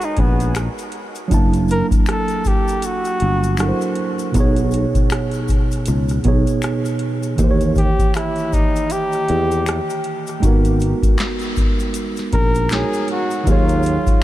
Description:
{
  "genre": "R&B, neo-soul",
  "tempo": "79 BPM",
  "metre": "4/4",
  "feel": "swing 60% on 16ths",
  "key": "G# minor",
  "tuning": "A4 = 437 Hz",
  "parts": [
    { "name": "warm flugelhorn", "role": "melody", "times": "0.0-14.2 s", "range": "B3 to A#4", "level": "-23 LUFS", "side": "left 1 dB", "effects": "diffuse ambient delay" },
    { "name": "tine electric piano", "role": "accompaniment", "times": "0.0-14.2 s", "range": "B2 to A5", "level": "-21 LUFS", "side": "right 3 dB", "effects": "none" },
    { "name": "booming analog drum machine", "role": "drums", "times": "0.0-14.2 s", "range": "handclaps, hi-hat, kick drum, rim click, snare drum", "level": "-20 LUFS", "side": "equal", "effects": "none" },
    { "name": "tube shaker and finger snaps", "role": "percussion", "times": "0.0-14.2 s", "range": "none", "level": "-35 LUFS", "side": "left 6 dB", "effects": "none" },
    { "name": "sustaining fretless electric bass", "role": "bass", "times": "0.2-14.1 s", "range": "F#1 to E2", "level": "-19 LUFS", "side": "equal", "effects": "wide subtle chorus" }
  ],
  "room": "light reverb, small room ambience",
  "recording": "none",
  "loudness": "-16 LUFS",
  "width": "side -14 dB against mid",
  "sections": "0.0-14.2 A section",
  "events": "flugelhorn solo 0.0-14.2",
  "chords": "0.0 G#m11; 1.3 F#7alt; 4.3 B69; 7.4 D#7b9; 10.4 G#m9; 13.5 D#m11"
}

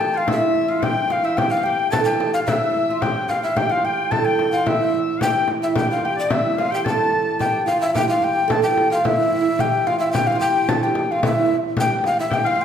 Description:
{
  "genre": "medieval dance",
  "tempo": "110 BPM",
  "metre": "2/4",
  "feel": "straight",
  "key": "unclear",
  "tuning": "A4 = 440 Hz",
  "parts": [
    { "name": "breathy mellow tenor recorder", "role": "melody", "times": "0.0-12.6 s", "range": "D5 to A5", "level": "-20 LUFS", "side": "left 2 dB", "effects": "none" },
    { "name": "bright shawm", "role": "second line", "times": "0.0-7.7, 12.3-12.6 s", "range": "D5 to A5", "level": "-28 LUFS", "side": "left 3 dB", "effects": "none" },
    { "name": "oud", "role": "second line", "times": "0.0-12.6 s", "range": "D4 to A4", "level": "-25 LUFS", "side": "right 7 dB", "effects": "none" },
    { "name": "dark hurdy-gurdy", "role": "drone", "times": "0.0-12.6 s", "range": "A2 to E3", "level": "-28 LUFS", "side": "right 2 dB", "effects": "none" },
    { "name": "frame drum", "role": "percussion", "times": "0.0-12.6 s", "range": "none", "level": "-25 LUFS", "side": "left 2 dB", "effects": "none" }
  ],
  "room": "wet recital hall reverb, RT60 1.4 s",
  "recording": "recorded in a church or concert hall",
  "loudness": "-17 LUFS",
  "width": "side -8 dB against mid",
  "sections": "0.0-8.0 A section; 8.0-12.6 A section",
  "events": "none",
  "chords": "none"
}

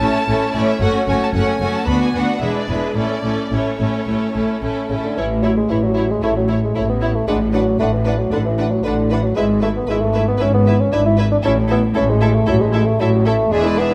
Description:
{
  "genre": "quick classical-period movement for symphony orchestra",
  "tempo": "114 BPM",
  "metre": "4/4",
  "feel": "rubato",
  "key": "A major",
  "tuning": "A4 = 440 Hz",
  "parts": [
    { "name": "rich chamber violin section", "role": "melody", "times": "0.0-13.9 s", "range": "B4 to B5", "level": "-30 LUFS", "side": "equal", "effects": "none" },
    { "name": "rich studio violin section", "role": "second line", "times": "0.0-13.9 s", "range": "E4 to C#5", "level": "-29 LUFS", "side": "equal", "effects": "none" },
    { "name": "rich chamber viola section", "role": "accompaniment", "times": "0.0-13.9 s", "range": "G#3 to E4", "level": "-25 LUFS", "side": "equal", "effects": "none" },
    { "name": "clear chamber double bass section", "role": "bass", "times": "0.0-13.9 s", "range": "E1 to D2", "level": "-24 LUFS", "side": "equal", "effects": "none" },
    { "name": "rich chamber cello section", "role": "bass", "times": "0.0-13.9 s", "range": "D2 to A2", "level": "-24 LUFS", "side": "equal", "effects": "none" },
    { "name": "dark bassoon", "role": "accompaniment", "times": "4.9-13.9 s", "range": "C#3 to E4", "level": "-21 LUFS", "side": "equal", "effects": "none" }
  ],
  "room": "moderate recital hall reverb, RT60 1.3 s",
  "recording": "none",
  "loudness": "-17 LUFS",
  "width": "mono",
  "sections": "0.0-5.2 A section; 5.2-13.9 A section",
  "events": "none",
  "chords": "0.0 A; 0.8 F#m; 1.9 Bm; 2.4 E7; 3.0 A; 7.3 Bm7/A; 9.4 E/G#; 11.4 A5"
}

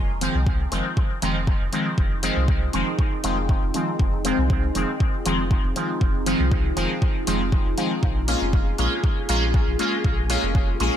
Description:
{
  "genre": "dub techno",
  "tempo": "119 BPM",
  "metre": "4/4",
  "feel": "straight",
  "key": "F minor",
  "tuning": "A4 = 440 Hz",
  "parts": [
    { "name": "deep dark ambient pad", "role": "sustained chords", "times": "1.4-11.0 s", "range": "Bb3 to Ab4", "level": "-30 LUFS", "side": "equal", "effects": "chorus, built-in reverb, sidechain pumping" },
    { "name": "soft dub sub bass", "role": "bass", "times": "0.0-10.9 s", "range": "F1 to C2", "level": "-26 LUFS", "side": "equal", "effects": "sidechain pumping" },
    { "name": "resonant sweep polysynth", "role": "stabs", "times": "0.2-10.9 s", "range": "Eb3 to F4", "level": "-25 LUFS", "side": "equal", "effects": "chorus, phaser, sidechain pumping, dub echo" },
    { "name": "electronic hi-hat", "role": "drums", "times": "0.2-10.9 s", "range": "none", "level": "-30 LUFS", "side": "left 2 dB", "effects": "none" },
    { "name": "electronic kick drum", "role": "drums", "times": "0.5-10.7 s", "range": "none", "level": "-21 LUFS", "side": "equal", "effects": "none" },
    { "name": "flickering grainy texture", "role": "texture", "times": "8.7-11.0 s", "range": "Ab4", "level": "-36 LUFS", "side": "equal", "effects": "built-in reverb, sidechain pumping" }
  ],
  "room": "little or no reverb",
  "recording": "none",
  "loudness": "-20 LUFS",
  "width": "side -10 dB against mid",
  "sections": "0.0-11.0 A section",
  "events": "none",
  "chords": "0.0 Fm7; 8.0 Bbm7"
}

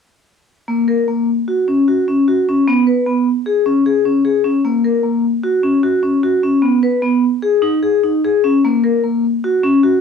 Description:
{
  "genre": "contemporary instrumental, contemporary",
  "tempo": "151 BPM",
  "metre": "5/4",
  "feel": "straight",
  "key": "F# major",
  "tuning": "A4 = 440 Hz",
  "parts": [
    { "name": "vibraphone with hard mallets", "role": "solo", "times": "0.7-9.9 s", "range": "A#3 to B4", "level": "-13 LUFS", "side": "left 2 dB", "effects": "none" }
  ],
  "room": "wet studio reverb, RT60 0.5 s",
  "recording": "home recording on cassette, small room reverb",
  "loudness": "-13 LUFS",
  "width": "side -6 dB against mid",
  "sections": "0.7-8.6 A section; 8.6-10.0 B section",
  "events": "none",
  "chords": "none"
}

